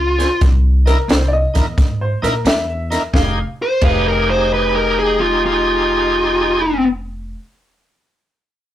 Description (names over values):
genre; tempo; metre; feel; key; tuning
electric blues shuffle; 88 BPM; 4/4; swing 68% on 8ths; F minor; A4 = 440 Hz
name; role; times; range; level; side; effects
smooth overdriven lead guitar; melody; 0.0-6.9 s; F4 to C5; -16 LUFS; left 1 dB; none
upright bass; bass; 0.0-7.3 s; F1 to Bb2; -19 LUFS; equal; none
bright tonewheel organ; accompaniment; 0.2-6.6 s; Db4 to C5; -20 LUFS; right 1 dB; slow rotary speaker, overdrive
compact cocktail drum kit; drums; 0.2-4.1 s; crash cymbal, hi-hat, kick drum, snare drum; -17 LUFS; equal; none
clear upright piano; second line; 0.9-7.3 s; Bb4 to F5; -23 LUFS; left 1 dB; none
room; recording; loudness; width
moderate small room reverb, RT60 0.6 s; rough rehearsal-room recording, tube saturation; -13 LUFS; side -12 dB against mid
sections
0.0-3.1 A section; 3.1-5.9 B section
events
none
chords
0.4 C7#9; 3.1 Fm7